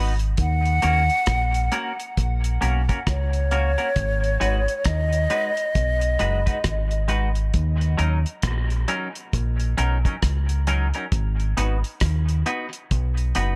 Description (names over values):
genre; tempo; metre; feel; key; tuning
dub reggae; 67 BPM; 4/4; swing 61% on 16ths; Eb minor; A4 = 440 Hz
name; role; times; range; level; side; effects
semi-hollow electric guitar; accompaniment; 0.0-13.6 s; Gb3 to Cb5; -31 LUFS; equal; lush chorus, dub echo
deep dub fingered electric bass; bass; 0.0-13.6 s; Gb1 to Eb2; -24 LUFS; equal; none
cloth-damped thuddy drum kit; drums; 0.2-13.6 s; hi-hat, kick drum, rim click; -28 LUFS; equal; none
breathy mellow silver concert flute; melody; 0.4-7.1 s; Db5 to Gb5; -27 LUFS; equal; dub echo
room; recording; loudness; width
light reverb, studio reverb; none; -23 LUFS; mono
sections
0.4-13.6 A section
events
break 0.0-0.4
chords
0.4 Ebm7; 4.0 Abm7; 7.5 Ebm7; 11.1 Abm7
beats
| 0.38 1.28 2.17 3.07 | 3.96 4.86 5.75 6.65 | 7.54 8.44 9.33 10.23 | 11.12 12.02 12.91